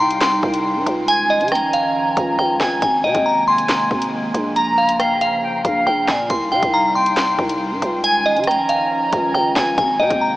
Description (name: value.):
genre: hip hop, drill.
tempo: 138 BPM.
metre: 4/4.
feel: half-time.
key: unclear.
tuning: A4 = 440 Hz.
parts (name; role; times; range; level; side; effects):
glassy synth bell; melody; 0.0-10.4 s; Eb5 to C6; -18 LUFS; equal; chorus, phaser, analog delay.
reedy jazz flute; second line; 0.0-10.4 s; F5 to Bb5; -21 LUFS; equal; analog delay.
dark analog pad; sustained chords; 0.0-10.4 s; C3 to Eb4; -27 LUFS; equal; wide subtle chorus.
growling 808-style bass; bass; 0.0-10.4 s; Ab1 to Db3; -24 LUFS; equal; none.
drill drum kit; drums; 0.1-10.2 s; handclaps, hi-hat, kick drum, rim click, snare drum; -26 LUFS; equal; none.
room: wet huge ambient reverb, RT60 7.2 s.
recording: dreamy mix soaked in reverb, small speaker sound.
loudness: -15 LUFS.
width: side -17 dB against mid.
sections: 0.0-10.4 A section.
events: none.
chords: 0.0 Cm; 1.1 Dbadd9; 2.8 Abadd9; 4.6 Bbm; 6.3 Cm; 8.0 Dbadd9; 9.8 Abadd9.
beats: 0.21 0.65 | 1.08 1.52 1.95 2.39 | 2.82 3.26 3.69 4.13 | 4.56 5.00 5.43 5.87 | 6.30 6.73 7.17 7.60 | 8.04 8.47 8.91 9.34 | 9.78 10.21.